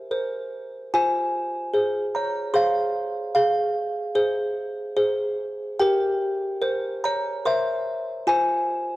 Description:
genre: classical, lullaby for music box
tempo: 74 BPM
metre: 3/4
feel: rubato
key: F minor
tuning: A4 = 441 Hz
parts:
  - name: music box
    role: solo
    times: 0.0-9.0 s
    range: F4 to C6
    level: -22 LUFS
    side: equal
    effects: none
room: light reverb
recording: worn, warbling old tape, cassette tape, warbly pitch drift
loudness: -22 LUFS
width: side -16 dB against mid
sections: 0.0-9.0 A section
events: none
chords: 0.0 C7/G; 0.9 Fm; 3.4 Fm/Ab; 5.8 C7/G; 8.3 Fm

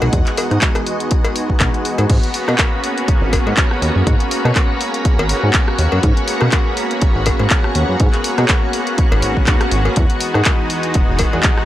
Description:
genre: nu-disco, nu disco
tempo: 122 BPM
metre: 4/4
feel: swing 56% on 16ths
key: G# minor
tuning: A4 = 440 Hz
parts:
  - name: warm analog pad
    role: accompaniment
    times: 0.0-11.7 s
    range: G#3 to F#4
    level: -20 LUFS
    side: equal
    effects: chorus, sidechain pumping, tape echo
  - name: string machine, full ensemble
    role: sustained chords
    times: 0.0-11.7 s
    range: E3 to C#6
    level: -25 LUFS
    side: equal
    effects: ensemble chorus, vintage 12-bit sampler grit, sidechain pumping
  - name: chorused synth bass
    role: bass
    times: 0.0-11.4 s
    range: E1 to B2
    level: -17 LUFS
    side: equal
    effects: none
  - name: cowbell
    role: percussion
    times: 0.0-11.4 s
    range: none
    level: -23 LUFS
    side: left 5 dB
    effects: none
  - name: electronic kick drum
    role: drums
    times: 0.1-11.6 s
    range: none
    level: -16 LUFS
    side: equal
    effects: none
  - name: house drum kit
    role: drums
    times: 0.1-11.7 s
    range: crash cymbal, handclaps, hi-hat, rim click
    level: -20 LUFS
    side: left 1 dB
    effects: none
room: little or no reverb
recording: dry, gritty hardware recording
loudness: -13 LUFS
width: side -13 dB against mid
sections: 0.0-2.1 A section; 2.1-11.7 B section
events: drop 2.1-11.7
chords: 0.0 Emaj9; 2.1 G#m11; 10.0 Emaj9

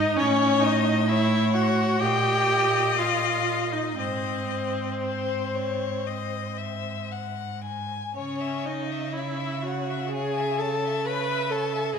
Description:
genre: classical, slow romantic movement for string quartet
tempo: 56-68 BPM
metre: 4/4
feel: rubato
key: unclear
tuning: A4 = 440 Hz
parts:
  - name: rich violin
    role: second line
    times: 0.0-12.0 s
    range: B#4 to B5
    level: -30 LUFS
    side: left 5 dB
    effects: none
  - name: rich viola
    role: accompaniment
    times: 0.0-12.0 s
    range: B#3 to B4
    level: -27 LUFS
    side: right 1 dB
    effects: none
  - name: rich cello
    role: bass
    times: 0.0-12.0 s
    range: G#2 to C#3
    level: -29 LUFS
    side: right 3 dB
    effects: none
  - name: clear violin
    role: melody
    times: 0.2-12.0 s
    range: B#4 to G#5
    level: -30 LUFS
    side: left 11 dB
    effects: none
room: wet concert hall reverb, RT60 1.9 s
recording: minimal, uncompressed stereo recording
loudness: -23 LUFS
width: side -6 dB against mid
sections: 0.0-12.0 A section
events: none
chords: 0.2 A; 2.0 D#/A#; 4.0 G#; 8.2 C#m

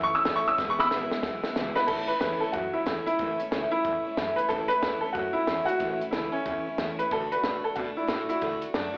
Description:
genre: rockabilly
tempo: 183 BPM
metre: 4/4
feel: swing 63% on 8ths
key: A major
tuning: A4 = 440 Hz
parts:
  - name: clear upright piano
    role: melody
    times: 0.0-9.0 s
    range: C#4 to E6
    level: -27 LUFS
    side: equal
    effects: slapback echo
  - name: picked steel-string acoustic guitar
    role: accompaniment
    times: 0.0-9.0 s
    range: E2 to F#4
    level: -31 LUFS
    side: equal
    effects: none
  - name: upright bass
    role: bass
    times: 0.0-8.9 s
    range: E1 to B2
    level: -38 LUFS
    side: equal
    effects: none
  - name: compact cocktail drum kit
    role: drums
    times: 0.3-8.8 s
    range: crash cymbal, hi-hat, kick drum, snare drum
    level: -33 LUFS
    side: equal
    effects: none
room: light reverb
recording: live gig heard through the venue's PA, club reverb, AM radio sound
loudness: -25 LUFS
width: side -32 dB against mid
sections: 0.0-1.9 A section; 1.9-9.0 B section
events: upright piano solo 0.0-1.9; drum fill 0.6-1.9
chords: 0.0 A; 0.6 E; 1.9 A; 7.1 D

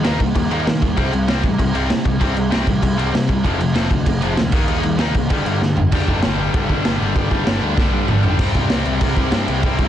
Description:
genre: punk rock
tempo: 194 BPM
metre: 4/4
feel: straight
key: unclear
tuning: A4 = 441 Hz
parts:
  - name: cranked stack guitar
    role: riff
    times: 0.0-9.9 s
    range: F2 to Eb4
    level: -22 LUFS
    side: left 10 dB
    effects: overdrive
  - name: distorted electric guitar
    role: riff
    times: 0.0-9.9 s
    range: G2 to E4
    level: -24 LUFS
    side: right 11 dB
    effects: overdrive
  - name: growling picked electric bass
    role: bass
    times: 0.0-9.9 s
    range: F1 to Eb3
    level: -22 LUFS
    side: equal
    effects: overdrive
  - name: raw garage drum kit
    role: drums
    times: 0.0-9.9 s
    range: crash cymbal, kick drum, snare drum, toms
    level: -19 LUFS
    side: right 1 dB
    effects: none
room: light reverb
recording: dense, heavily limited modern master, cassette tape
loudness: -15 LUFS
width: side -11 dB against mid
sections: 0.0-5.9 A section; 5.9-8.4 B section; 8.4-9.9 C section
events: drum fill 5.6-5.9, 7.8-8.4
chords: 0.0 Eb; 1.0 C5; 3.4 F; 4.5 Eb; 5.3 G5; 5.9 G; 8.4 C

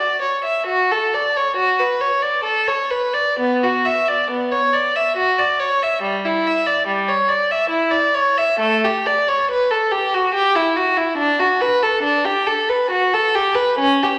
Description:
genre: classical, baroque-style suite movement for unaccompanied violin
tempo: 69 BPM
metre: 3/4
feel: rubato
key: D major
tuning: A4 = 439 Hz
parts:
  - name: rich violin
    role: solo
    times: 0.0-14.2 s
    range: G3 to E5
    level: -18 LUFS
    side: equal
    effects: none
room: wet recital hall reverb, RT60 1.4 s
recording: vinyl crackle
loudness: -18 LUFS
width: mono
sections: 0.7-14.2 A section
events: none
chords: none

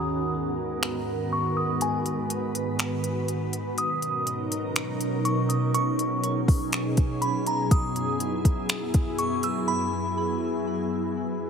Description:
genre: hip hop, atmospheric cloud-rap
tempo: 122 BPM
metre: 4/4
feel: half-time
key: B major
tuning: A4 = 441 Hz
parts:
  - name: glassy synth bell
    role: melody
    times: 0.0-10.1 s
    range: G#5 to E6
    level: -30 LUFS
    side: equal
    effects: chorus, phaser, tremolo, low-pass filter, tape echo
  - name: glassy FM pad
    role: sustained chords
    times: 0.0-11.5 s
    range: F#2 to B4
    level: -27 LUFS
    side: equal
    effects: ensemble chorus, built-in reverb, sidechain pumping, low-pass filter
  - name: smooth R&B drum kit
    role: drums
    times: 0.8-9.5 s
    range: finger snaps, hi-hat, kick drum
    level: -24 LUFS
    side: equal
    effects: overdrive
room: moderate huge ambient reverb, RT60 6.1 s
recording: none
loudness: -24 LUFS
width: side -6 dB against mid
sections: 0.0-11.5 A section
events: filter sweep 0.0-11.5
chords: 0.0 G#m7; 3.8 Bmaj7; 7.7 F#7sus4

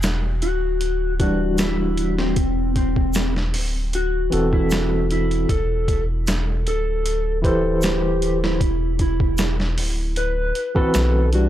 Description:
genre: trip hop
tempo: 77 BPM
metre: 4/4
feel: straight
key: unclear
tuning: A4 = 439 Hz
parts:
  - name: soft dub sub bass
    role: bass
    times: 0.0-11.5 s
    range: D1 to B1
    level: -22 LUFS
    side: equal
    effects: none
  - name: boom bap sampler-style drum kit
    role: drums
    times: 0.0-11.5 s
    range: hi-hat, kick drum, snare drum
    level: -24 LUFS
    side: equal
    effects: none
  - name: egg shaker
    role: percussion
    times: 0.0-11.1 s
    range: none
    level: -35 LUFS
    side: right 2 dB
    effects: none
  - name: electric slide guitar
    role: melody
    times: 0.4-11.5 s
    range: C4 to B4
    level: -25 LUFS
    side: left 1 dB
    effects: tape echo
  - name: bright tine electric piano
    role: accompaniment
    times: 1.2-11.5 s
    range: E3 to C5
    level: -22 LUFS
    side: equal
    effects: tremolo, low-pass filter
room: little or no reverb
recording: dry, gritty hardware recording, transformer saturation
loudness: -18 LUFS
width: side -12 dB against mid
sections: 0.0-11.5 A section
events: filter sweep on tine electric piano 0.0-11.5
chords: 0.0 Em9; 2.4 F#m7b5; 5.5 D13sus4; 8.6 D13

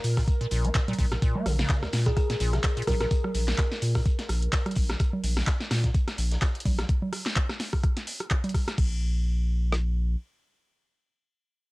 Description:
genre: acid house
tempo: 127 BPM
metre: 4/4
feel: swing 56% on 16ths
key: Bb minor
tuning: A4 = 441 Hz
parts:
  - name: warm analog pad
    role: sustained chords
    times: 0.0-5.0 s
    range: Bb4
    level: -41 LUFS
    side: right 2 dB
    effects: chorus, sidechain pumping
  - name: saturated sub bass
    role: bass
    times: 0.0-10.2 s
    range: Bb1 to Bb2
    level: -26 LUFS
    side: equal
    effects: tube saturation, sidechain pumping
  - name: electro analog drum machine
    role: drums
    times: 0.0-8.9 s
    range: congas, crash cymbal, handclaps, hi-hat, rim click, snare drum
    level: -31 LUFS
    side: right 1 dB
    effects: none
  - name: vintage drum kit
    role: drums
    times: 0.0-6.9 s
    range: hi-hat, snare drum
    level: -42 LUFS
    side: left 1 dB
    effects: sidechain pumping on hats, high-pass filter on hats, high-pass filter on snare, high-pass filter on room
  - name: acid bass, square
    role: riff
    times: 0.2-3.1 s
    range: Bb1 to Bb3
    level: -32 LUFS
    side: equal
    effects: overdrive, lush chorus, sidechain pumping
  - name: clean 12-bit digital drum machine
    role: drums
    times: 0.2-9.8 s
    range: kick drum, rim click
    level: -25 LUFS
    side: equal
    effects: overdrive
  - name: kalimba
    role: melody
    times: 2.1-3.1 s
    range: Ab4 to Bb4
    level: -33 LUFS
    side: left 1 dB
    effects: tape echo
room: small room ambience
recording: dry, gritty hardware recording, cassette tape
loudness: -24 LUFS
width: side -21 dB against mid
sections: 0.0-8.8 A section; 8.8-11.7 B section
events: drop 0.0-8.8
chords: none

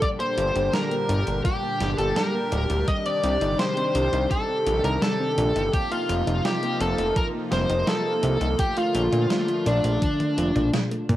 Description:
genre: synthwave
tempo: 84 BPM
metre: 4/4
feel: straight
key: G minor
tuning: A4 = 440 Hz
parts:
  - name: smooth overdriven lead guitar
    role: melody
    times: 0.0-10.7 s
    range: D4 to Eb5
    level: -26 LUFS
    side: left 1 dB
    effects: tape echo, plate reverb
  - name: FM electric piano with soft pad layer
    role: second line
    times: 0.0-10.7 s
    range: D5 to Eb6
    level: -33 LUFS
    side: equal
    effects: chorus, cassette tape, tape echo, plate reverb
  - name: brassy analog pad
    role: sustained chords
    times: 0.0-11.2 s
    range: Bb2 to G4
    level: -29 LUFS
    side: equal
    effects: chorus, sidechain pumping, cassette tape, plate reverb
  - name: thumb-piano-like synth pluck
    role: arpeggios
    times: 0.0-11.2 s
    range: F3 to G4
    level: -34 LUFS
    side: left 2 dB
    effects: chorus, cassette tape, tape echo, plate reverb
  - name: clean 12-bit digital drum machine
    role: drums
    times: 0.0-11.2 s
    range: hi-hat, snare drum, toms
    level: -29 LUFS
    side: equal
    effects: none
  - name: electronic kick drum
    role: drums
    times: 0.0-10.2 s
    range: none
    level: -26 LUFS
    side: equal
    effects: none
  - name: fat analog bass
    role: bass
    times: 0.4-11.2 s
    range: D1 to Bb2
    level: -25 LUFS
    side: equal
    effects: none
room: wet booth ambience, RT60 0.2 s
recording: home recording on cassette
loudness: -21 LUFS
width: side -14 dB against mid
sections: 0.0-11.2 A section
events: drum fill 10.0-11.2; band accent 10.7-11.1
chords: 0.0 Gm; 2.9 Cmadd9; 5.7 F7sus4; 8.6 Bbmaj7

